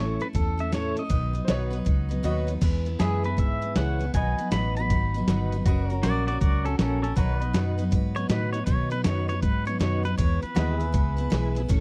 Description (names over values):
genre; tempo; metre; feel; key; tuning
honky-tonk and classic country; 158 BPM; 4/4; swing 65% on 8ths; E major; A4 = 440 Hz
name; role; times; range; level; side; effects
pedal steel guitar; melody; 0.0-11.5 s; C#4 to B5; -34 LUFS; equal; none
picked steel-string acoustic guitar; accompaniment; 0.0-11.8 s; A2 to B4; -33 LUFS; equal; none
tonewheel organ; accompaniment; 0.0-11.6 s; C#4 to D#5; -37 LUFS; equal; slow rotary speaker, chorus vibrato
vintage muted fingered electric bass; bass; 0.0-11.8 s; F#1 to B2; -29 LUFS; equal; none
lo-fi sampler-style drum kit; drums; 0.2-11.8 s; crash cymbal, hi-hat, kick drum, snare drum; -28 LUFS; equal; none
bright upright piano; second line; 1.4-2.5 s; F#4 to D#5; -36 LUFS; equal; none
pedal steel guitar; sustained chords; 3.0-11.7 s; F#4 to E5; -40 LUFS; equal; none
room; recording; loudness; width
little or no reverb; dry, close 1970s-style studio recording; -25 LUFS; mono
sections
0.0-2.6 A section; 2.6-11.8 B section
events
kick and snare drop out 2.2-2.6; pedal steel guitar solo 2.6-11.8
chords
0.0 A; 1.1 B; 2.6 E; 4.1 B; 5.7 F#; 7.2 B; 10.2 E